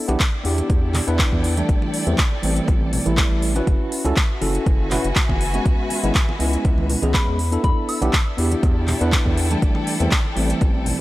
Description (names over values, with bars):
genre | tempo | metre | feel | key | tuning
deep house | 121 BPM | 4/4 | swing 53% on 16ths | unclear | A4 = 440 Hz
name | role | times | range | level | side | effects
tine electric piano | stabs | 0.0-11.0 s | E3 to B4 | -24 LUFS | equal | medium stereo tremolo, sidechain pumping, tape echo
rich studio string section | texture | 0.0-11.0 s | E4 to G#5 | -30 LUFS | left 1 dB | sidechain pumping
round analog bass | bass | 0.1-10.9 s | F#1 to E2 | -22 LUFS | equal | sidechain pumping
deep house drum kit | drums | 0.1-11.0 s | handclaps, hi-hat | -25 LUFS | equal | none
congas | percussion | 0.1-11.0 s | none | -31 LUFS | right 3 dB | sidechain pumping on perc
electronic kick drum | drums | 0.2-10.7 s | none | -19 LUFS | equal | none
soft synth bell | melody | 7.1-8.4 s | B5 to E6 | -29 LUFS | left 2 dB | chorus, phaser, tape echo
room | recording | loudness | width
little or no reverb | dry, gritty hardware recording | -17 LUFS | side -17 dB against mid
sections
0.0-11.0 A section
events
none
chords
0.0 Em7; 1.7 Am7; 3.7 F#m7; 5.7 C#m7; 7.4 Em7; 9.6 Am7